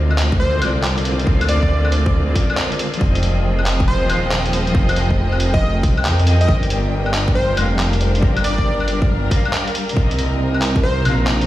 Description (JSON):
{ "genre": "future garage", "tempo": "138 BPM", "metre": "4/4", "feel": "swing 65% on 16ths", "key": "unclear", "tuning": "A4 = 442 Hz", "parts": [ { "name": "electric guitar at the edge of break-up", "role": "accompaniment", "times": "0.0-11.5 s", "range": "C3 to F5", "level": "-25 LUFS", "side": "left 1 dB", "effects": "tremolo, sidechain pumping, dub echo" }, { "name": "bright studio string section", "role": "sustained chords", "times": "0.0-11.5 s", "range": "C3 to G5", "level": "-25 LUFS", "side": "right 1 dB", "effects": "sidechain pumping" }, { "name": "swelling detuned saw bass", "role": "bass", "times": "0.0-11.5 s", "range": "Eb1 to F2", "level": "-18 LUFS", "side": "equal", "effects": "sidechain pumping" }, { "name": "drifting glass-harmonics texture", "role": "texture", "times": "0.0-11.5 s", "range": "Bb4", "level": "-31 LUFS", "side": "equal", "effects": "chorus, built-in reverb" }, { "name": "lo-fi sampler-style drum kit", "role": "drums", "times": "0.1-11.5 s", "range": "claves, handclaps, hi-hat", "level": "-24 LUFS", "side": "left 1 dB", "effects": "studio ambience" }, { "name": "electronic kick drum", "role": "drums", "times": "0.3-10.8 s", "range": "none", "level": "-17 LUFS", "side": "equal", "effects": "studio ambience" }, { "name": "plucky unison lead", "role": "melody", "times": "0.4-11.1 s", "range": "C5 to Eb5", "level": "-26 LUFS", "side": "equal", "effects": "dub echo" } ], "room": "little or no reverb", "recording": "played on a big sound system in a bare room, stone room reverb, vinyl crackle", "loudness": "-15 LUFS", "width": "side -14 dB against mid", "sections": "0.0-11.5 A section", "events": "none", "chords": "0.0 Dm7b5; 3.0 Fm7; 6.5 Gm; 10.0 Cm7" }